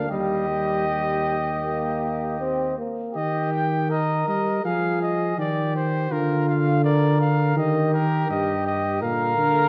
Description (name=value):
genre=classical, imitative canzona for brass ensemble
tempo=81 BPM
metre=4/4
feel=uneven beats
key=Eb major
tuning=A4 = 440 Hz
part: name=clear trumpet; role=melody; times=0.0-9.7 s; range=Bb4 to G5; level=-30 LUFS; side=equal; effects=none
part: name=mellow flugelhorn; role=second line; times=0.0-9.7 s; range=F4 to Bb4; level=-28 LUFS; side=equal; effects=none
part: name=clear trombone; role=accompaniment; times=0.0-3.1, 9.0-9.7 s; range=D3 to C4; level=-30 LUFS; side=equal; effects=none
part: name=mellow tuba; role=bass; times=0.0-9.7 s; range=Eb2 to G3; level=-26 LUFS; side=equal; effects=none
room=wet scoring stage reverb, RT60 1.6 s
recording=worn, warbling old tape, cassette tape, warbly pitch drift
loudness=-23 LUFS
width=mono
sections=0.0-3.2 A section; 3.2-9.7 B section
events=none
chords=0.1 Eb; 4.6 Fm; 6.1 Bb/D; 7.6 Eb; 9.0 Bb